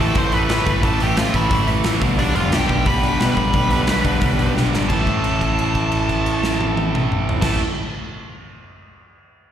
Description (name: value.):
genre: punk rock.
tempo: 176 BPM.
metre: 4/4.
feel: straight.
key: unclear.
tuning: A4 = 438 Hz.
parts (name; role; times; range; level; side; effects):
nasal lead guitar with a parked wah; melody; 0.0-7.6 s; D4 to C6; -24 LUFS; equal; overdrive, slapback echo, tape echo.
crunchy overdriven guitar; riff; 0.0-7.6 s; G2 to A3; -24 LUFS; left 9 dB; slapback echo.
tight distorted guitar; riff; 0.0-7.6 s; G2 to A3; -23 LUFS; right 10 dB; distortion, slapback echo.
growling picked electric bass; bass; 0.0-7.6 s; F1 to B2; -22 LUFS; equal; overdrive.
big rock drum kit; drums; 0.1-7.5 s; crash cymbal, hi-hat, kick drum, snare drum, toms; -22 LUFS; equal; none.
room: studio reverb.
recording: live gig heard through the venue's PA, recital hall reverb.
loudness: -16 LUFS.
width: side -10 dB against mid.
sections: 0.0-4.9 A section; 4.9-7.6 B section.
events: drum fill 4.6-4.9; held note 4.9-7.4.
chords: 0.0 A5; 2.0 G; 4.9 A5.